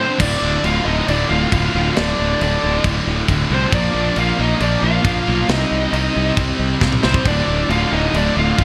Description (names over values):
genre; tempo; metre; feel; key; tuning
heavy metal; 136 BPM; 4/4; straight; D phrygian; A4 = 440 Hz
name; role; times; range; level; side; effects
bluesy overdriven lead guitar; melody; 0.0-8.6 s; C5 to F5; -24 LUFS; equal; distortion, delay
high-gain lead guitar; second line; 0.0-8.6 s; C4 to F4; -29 LUFS; equal; distortion
distorted electric guitar; riff; 0.0-8.6 s; D2 to C4; -27 LUFS; equal; overdrive
distorted electric guitar; riff; 0.0-8.6 s; D2 to C4; -27 LUFS; equal; overdrive
scooped high-gain guitar; riff; 0.2-8.6 s; D2 to C4; -30 LUFS; equal; none
fuzz fingered electric bass; bass; 0.2-8.6 s; D1 to C2; -22 LUFS; equal; overdrive
tight metal drum kit; drums; 0.2-8.6 s; crash cymbal, kick drum, snare drum, toms; -25 LUFS; equal; none
room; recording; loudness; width
light reverb, small room ambience; bright 1980s-style digital production; -17 LUFS; mono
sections
0.2-8.6 A section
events
break 0.0; half time 0.2-8.6; drum fill 6.8-7.3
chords
0.2 Dm; 3.7 Bb; 5.5 Cm; 7.3 Dm